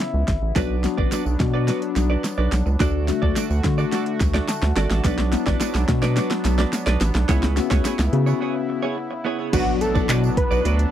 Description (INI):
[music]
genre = dance-pop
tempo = 107 BPM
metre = 4/4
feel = straight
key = B dorian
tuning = A4 = 440 Hz
[part]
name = mellow tine electric piano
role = accompaniment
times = 0.0-10.7 s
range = F#3 to A5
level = -26 LUFS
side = left 19 dB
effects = sidechain pumping
[part]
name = warm analog pad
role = sustained chords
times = 0.0-10.9 s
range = C#3 to F#4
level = -29 LUFS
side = equal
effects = chorus, sidechain pumping
[part]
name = deep house drum kit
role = drums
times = 0.0-10.9 s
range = crash cymbal, handclaps, hi-hat, kick drum, snare drum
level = -23 LUFS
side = right 1 dB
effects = none
[part]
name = round analog bass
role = bass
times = 0.1-10.9 s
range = G#1 to D3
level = -21 LUFS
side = right 1 dB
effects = sidechain pumping
[part]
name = direct-recorded clean electric guitar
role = riff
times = 0.6-10.9 s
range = B3 to D5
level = -27 LUFS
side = right 6 dB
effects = lush chorus
[part]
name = tambourine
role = percussion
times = 0.6-10.8 s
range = none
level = -40 LUFS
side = right 27 dB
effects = none
[part]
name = fat analog lead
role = melody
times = 9.5-10.6 s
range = F#4 to B4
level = -24 LUFS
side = right 1 dB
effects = chorus, tape echo
[part]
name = impact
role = sound effects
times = 9.7-10.9 s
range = none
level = -31 LUFS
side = right 1 dB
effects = none
[sound]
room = little or no reverb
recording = dry, close 1970s-style studio recording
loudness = -19 LUFS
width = side -11 dB against mid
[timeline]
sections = 0.0-9.5 A section; 9.5-10.9 B section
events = build-up 0.0-9.5; drum fill 0.0-8.4; tine electric piano fill 0.0-0.6, 4.2-5.0; break 8.4-9.5; drop 9.5-10.9; impact 9.5-10.9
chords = 0.0 C#m7; 0.6 Bm; 2.8 D; 5.0 Bm; 7.3 C#m7; 9.5 Bm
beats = 0.00 | 0.56 1.12 1.68 2.24 | 2.80 3.36 3.92 4.49 | 5.05 5.61 6.17 6.73 | 7.29 7.85 8.41 8.97 | 9.53 10.09 10.65